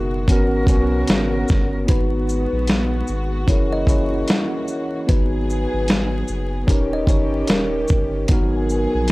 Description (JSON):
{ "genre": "lo-fi hip hop", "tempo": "75 BPM", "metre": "4/4", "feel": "swing 60% on 16ths", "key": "G# minor", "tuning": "A4 = 443 Hz", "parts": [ { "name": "tine electric piano", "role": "accompaniment", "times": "0.0-9.1 s", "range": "B3 to E5", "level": "-23 LUFS", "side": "equal", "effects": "overdrive, fast stereo tremolo, cassette tape" }, { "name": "warm studio string section", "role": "sustained chords", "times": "0.0-9.1 s", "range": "B2 to A#4", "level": "-30 LUFS", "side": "left 1 dB", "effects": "none" }, { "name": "saturated sub bass", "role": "bass", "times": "0.0-9.1 s", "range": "D#1 to B1", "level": "-24 LUFS", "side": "equal", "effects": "transformer saturation" }, { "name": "dusty soul sampler-style drum kit", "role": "drums", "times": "0.3-9.1 s", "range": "hi-hat, kick drum, shaker, snare drum", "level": "-18 LUFS", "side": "equal", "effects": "none" }, { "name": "kalimba", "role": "melody", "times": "1.9-7.8 s", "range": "A#4 to D#5", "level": "-27 LUFS", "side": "left 1 dB", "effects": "none" } ], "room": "light reverb", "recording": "dry, gritty hardware recording, transformer saturation, vinyl crackle", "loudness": "-17 LUFS", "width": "side -21 dB against mid", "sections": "0.0-1.9 A section; 1.9-9.1 B section", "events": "none", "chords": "0.3 G#m11; 1.9 G#m7; 3.5 F#7; 5.1 G#m7; 6.7 D#7; 8.3 G#m7", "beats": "0.29 1.09 | 1.89 2.69 3.49 4.29 | 5.09 5.89 6.69 7.49 | 8.29 9.09" }